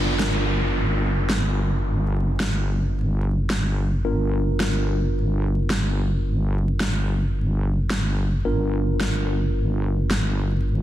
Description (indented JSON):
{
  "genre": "glitch hop",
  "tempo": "109 BPM",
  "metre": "4/4",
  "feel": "swing 56% on 16ths",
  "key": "unclear",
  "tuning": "A4 = 439 Hz",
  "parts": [
    { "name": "mellow tine electric piano", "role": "stabs", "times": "0.0-10.8 s", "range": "B3 to A#4", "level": "-29 LUFS", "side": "equal", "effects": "medium stereo tremolo, digital delay" },
    { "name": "wobble bass", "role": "bass", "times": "0.0-10.8 s", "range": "G1", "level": "-22 LUFS", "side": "equal", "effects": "chorus, tube saturation" },
    { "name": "downlifter", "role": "sound effects", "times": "0.0-4.0 s", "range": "none", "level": "-30 LUFS", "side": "equal", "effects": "none" },
    { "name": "electronic snare drum", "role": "drums", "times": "0.2-10.2 s", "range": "none", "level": "-28 LUFS", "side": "equal", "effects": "studio reverb" }
  ],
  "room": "light reverb, digital ambience",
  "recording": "dense, heavily limited modern master, vinyl crackle",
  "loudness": "-20 LUFS",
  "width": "side -13 dB against mid",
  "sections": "0.0-10.8 A section",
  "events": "none",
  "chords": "0.0 G7#9"
}